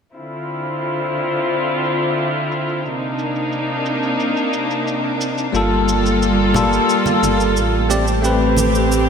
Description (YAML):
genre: sunset chillout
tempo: 89 BPM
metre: 4/4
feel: straight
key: D minor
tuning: A4 = 440 Hz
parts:
  - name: warm chamber string section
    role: sustained chords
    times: 0.1-9.1 s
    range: C3 to A4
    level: -19 LUFS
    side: left 1 dB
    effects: low-pass filter
  - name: cabasa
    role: drums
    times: 0.2-9.1 s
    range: none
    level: -29 LUFS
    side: right 3 dB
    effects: low-pass filter on perc
  - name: barky tine electric piano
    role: accompaniment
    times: 5.5-9.1 s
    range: G3 to D5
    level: -17 LUFS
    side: moving between left 3 dB and right 6 dB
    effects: medium stereo tremolo, auto-pan, ping-pong delay
  - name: warm sub bass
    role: bass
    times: 5.5-9.1 s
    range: G1 to A1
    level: -20 LUFS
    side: right 1 dB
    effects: tube saturation
  - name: congas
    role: percussion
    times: 6.5-8.7 s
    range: none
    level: -26 LUFS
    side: right 3 dB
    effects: none
room: wet lush hall reverb, RT60 2.6 s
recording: bright 1980s-style digital production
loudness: -16 LUFS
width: side -6 dB against mid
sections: 0.1-9.1 A section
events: filter sweep on drum 0.1-9.1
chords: 0.1 Dm9; 2.8 Cm9; 5.5 Gm9; 7.9 Am9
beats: | 0.15 0.82 1.50 2.17 | 2.84 3.52 4.19 4.87 | 5.54 6.21 6.89 7.56 | 8.24 8.91